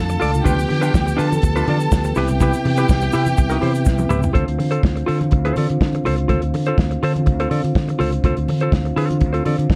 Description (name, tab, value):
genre	disco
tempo	124 BPM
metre	4/4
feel	straight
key	D dorian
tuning	A4 = 444 Hz
part	clear studio string section	second line	0.0-4.3 s	G4 to A5	-27 LUFS	equal	none
part	percussive tonewheel organ	sustained chords	0.0-9.8 s	C3 to G4	-27 LUFS	equal	slow rotary speaker
part	fingered electric bass	bass	0.0-9.8 s	C2 to D3	-23 LUFS	equal	none
part	semi-hollow electric guitar	accompaniment	0.1-9.6 s	D4 to D5	-26 LUFS	equal	none
part	warm soul drum kit	drums	0.1-9.8 s	hi-hat, kick drum, snare drum, toms	-22 LUFS	equal	none
part	congas	percussion	0.1-9.8 s	none	-32 LUFS	equal	none
part	egg shaker	percussion	0.1-4.3 s	none	-43 LUFS	equal	none
room	studio reverb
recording	dark, warm production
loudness	-18 LUFS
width	mono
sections	0.0-4.3 A section; 4.3-9.8 B section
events	drum fill 3.9-4.3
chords	0.5 G7/D; 2.2 Cmaj7; 4.3 Dm7